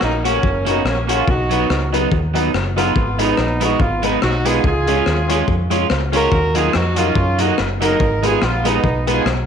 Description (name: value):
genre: ska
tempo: 143 BPM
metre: 4/4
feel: swing 55% on 8ths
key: unclear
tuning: A4 = 440 Hz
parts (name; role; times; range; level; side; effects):
- warm horn section; melody; 0.0-9.3 s; A#3 to A#4; -20 LUFS; right 1 dB; none
- warm upright piano; stabs; 0.0-9.2 s; D#4 to C#5; -24 LUFS; left 10 dB; none
- deep dub fingered electric bass; bass; 0.0-9.5 s; F#1 to F#2; -21 LUFS; equal; transformer saturation
- crunchy breakbeat drum kit; drums; 0.0-9.4 s; hi-hat, kick drum, rim click; -21 LUFS; left 3 dB; slapback echo
- electric guitar at the edge of break-up; accompaniment; 0.2-9.3 s; F#3 to F#4; -21 LUFS; right 11 dB; slapback echo
room: moderate echo chamber reverb, RT60 1.6 s, small room ambience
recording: 1960s-style stereo with parts hard left and right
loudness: -14 LUFS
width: side -7 dB against mid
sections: 0.0-9.5 A section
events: none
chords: 0.0 F#; 1.3 B; 3.0 G#m; 4.6 C#; 6.3 D#m; 8.0 G#m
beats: 0.02 0.44 0.86 | 1.28 1.70 2.12 2.54 | 2.96 3.38 3.80 4.22 | 4.64 5.06 5.48 5.90 | 6.32 6.74 7.16 7.58 | 8.00 8.42 8.83 9.25